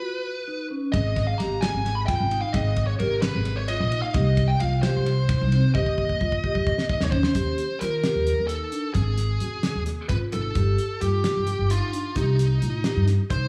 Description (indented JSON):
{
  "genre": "progressive instrumental, band music in an uneven meter",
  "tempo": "262 BPM (eighths)",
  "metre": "7/8",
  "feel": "straight",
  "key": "Eb mixolydian",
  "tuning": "A4 = 442 Hz",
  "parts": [
    { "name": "bluesy overdriven lead guitar", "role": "melody", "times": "0.0-13.5 s", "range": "Eb4 to Cb6", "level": "-30 LUFS", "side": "equal", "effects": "distortion, analog delay" },
    { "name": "vibraphone with medium mallets", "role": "arpeggios", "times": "0.0-13.4 s", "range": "C4 to Ab4", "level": "-33 LUFS", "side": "equal", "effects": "analog delay" },
    { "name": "upright bass", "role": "bass", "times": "0.9-13.5 s", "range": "G1 to Eb3", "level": "-26 LUFS", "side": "equal", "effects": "none" },
    { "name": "damped 70s drum kit", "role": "drums", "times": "0.9-13.4 s", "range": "hi-hat, kick drum, ride cymbal, snare drum", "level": "-31 LUFS", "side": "equal", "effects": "analog delay" }
  ],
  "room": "light reverb",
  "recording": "echo-heavy mix, studio ambience",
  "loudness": "-24 LUFS",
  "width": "mono",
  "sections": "0.0-7.4 A section; 7.4-13.5 B section",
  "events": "drum fill 5.7-7.4",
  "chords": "0.0 B; 0.9 Ab5; 4.1 Cm; 5.7 Eb; 7.4 Eb6; 9.0 Ab5; 10.6 Gsus2; 12.2 Cm",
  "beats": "0.02 0.25 0.48 0.71 | 0.94 1.17 1.40 1.62 1.85 2.08 2.31 | 2.54 2.77 3.00 3.23 3.46 3.69 3.92 | 4.14 4.37 4.60 4.83 5.06 5.29 5.52 | 5.75 5.98 6.21 6.43 6.66 6.89 7.12 | 7.35 7.58 7.81 8.04 8.27 8.50 8.72 | 8.95 9.18 9.41 9.64 9.87 10.10 10.33 | 10.56 10.79 11.02 11.24 11.47 11.70 11.93 | 12.16 12.39 12.62 12.85 13.08 13.31"
}